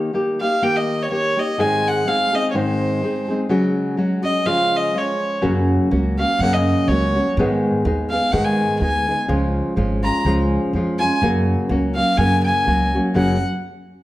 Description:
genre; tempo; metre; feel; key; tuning
mexican folk, mariachi; 124 BPM; 2/4; swing 55% on 8ths; F# major; A4 = 440 Hz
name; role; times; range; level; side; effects
nylon-string guitar; accompaniment; 0.0-13.4 s; F#2 to G#4; -20 LUFS; left 1 dB; none
rich violin; melody; 0.4-13.4 s; B#4 to A#5; -21 LUFS; equal; none
upright bass; bass; 5.4-13.4 s; F#1 to G#2; -21 LUFS; right 1 dB; none
room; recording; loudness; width
moderate recital hall reverb, RT60 1.3 s; none; -16 LUFS; side -16 dB against mid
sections
0.0-13.1 A section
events
none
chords
0.0 D#; 1.6 G#; 3.5 C#sus4; 4.5 C#; 5.4 F#; 7.4 G#m; 9.3 C#; 11.2 F#

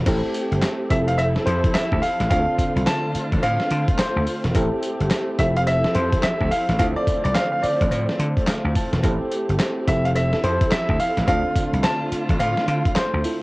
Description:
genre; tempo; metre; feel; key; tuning
R&B, new jack swing; 107 BPM; 4/4; swing 62% on 16ths; unclear; A4 = 440 Hz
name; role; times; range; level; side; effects
soft electric-piano-like synth keys; accompaniment; 0.0-13.4 s; C4 to A5; -28 LUFS; right 1 dB; chorus, cassette tape
dark studio string section; sustained chords; 0.0-13.4 s; D3 to A4; -28 LUFS; equal; cassette tape
vintage slap bass; bass; 0.0-13.2 s; E1 to D3; -23 LUFS; equal; none
dusty soul sampler-style drum kit; drums; 0.1-13.4 s; crash cymbal, handclaps, hi-hat, kick drum, snare drum, tambourine; -24 LUFS; equal; overdrive, cassette tape
cowbell; percussion; 0.1-13.1 s; none; -34 LUFS; left 2 dB; none
clear baby grand piano; melody; 0.9-13.4 s; C5 to A5; -23 LUFS; equal; cassette tape
room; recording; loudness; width
light reverb, digital ambience; home recording on cassette; -18 LUFS; side -22 dB against mid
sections
0.1-13.4 A section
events
synth keys fill 8.2-9.0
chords
0.1 Am7; 0.9 Fmaj7; 2.3 Dm7; 4.5 Am7; 5.4 Fmaj7; 6.8 Dm7; 9.0 Am7; 9.9 Fmaj7; 11.3 Dm7

